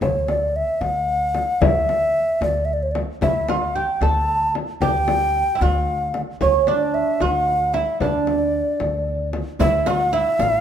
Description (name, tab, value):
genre	Arabic maqam ensemble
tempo	75 BPM (dotted quarters)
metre	6/8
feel	straight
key	D maqam suznak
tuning	A4 = 439 Hz
part	breathy alto ocarina	melody	0.0-10.6 s	C#5 to A5	-20 LUFS	equal	none
part	upright bass	bass	0.0-10.6 s	A1 to D2	-26 LUFS	equal	none
part	frame drum	percussion	0.0-10.5 s	none	-24 LUFS	left 4 dB	none
part	oud	second line	3.2-10.6 s	C#4 to A4	-24 LUFS	right 7 dB	none
part	riq	percussion	9.6-10.6 s	none	-31 LUFS	right 4 dB	none
room	moderate recital hall reverb, RT60 1.6 s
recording	minimal, uncompressed stereo recording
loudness	-18 LUFS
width	side -9 dB against mid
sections	0.0-9.6 A section; 9.6-10.6 B section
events	none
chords	none